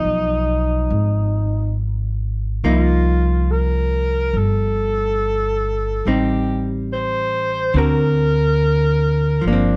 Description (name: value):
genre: jazz ballad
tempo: 70 BPM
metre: 4/4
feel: swing 68% on 8ths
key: unclear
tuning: A4 = 440 Hz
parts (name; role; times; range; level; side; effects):
- breathy alto saxophone; melody; 0.0-9.8 s; D4 to C5; -24 LUFS; equal; none
- archtop guitar, miked and amplified; accompaniment; 0.0-9.8 s; D3 to A#4; -24 LUFS; equal; none
- upright bass; bass; 0.0-9.8 s; G1 to D2; -22 LUFS; equal; none
room: little or no reverb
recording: dark, warm production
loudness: -19 LUFS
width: mono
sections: 0.0-9.8 A section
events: none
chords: 0.0 C#9 (rootless); 2.6 Cm7; 6.0 Am7b5; 7.7 Daug7